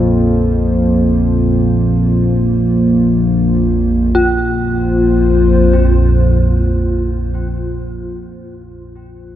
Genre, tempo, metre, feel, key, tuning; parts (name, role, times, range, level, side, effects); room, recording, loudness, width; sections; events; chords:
dark ambient drone; free time; A4 = 440 Hz
dark analog pad; sustained chords; 0.0-7.7 s; Bb3 to C5; -17 LUFS; right 1 dB; chorus
dark detuned synth bell; arpeggios; 0.0-9.4 s; F4; -20 LUFS; left 1 dB; chorus, phaser, tape echo
analog drone; drone; 0.0-7.4 s; Bb1 to F2; -14 LUFS; equal; chorus
wet cathedral reverb, RT60 7.3 s; in a vast, echoing space; -11 LUFS; side -11 dB against mid
0.0-4.1 A section; 4.1-8.4 B section
0.0 Bbm; 4.1 Bb5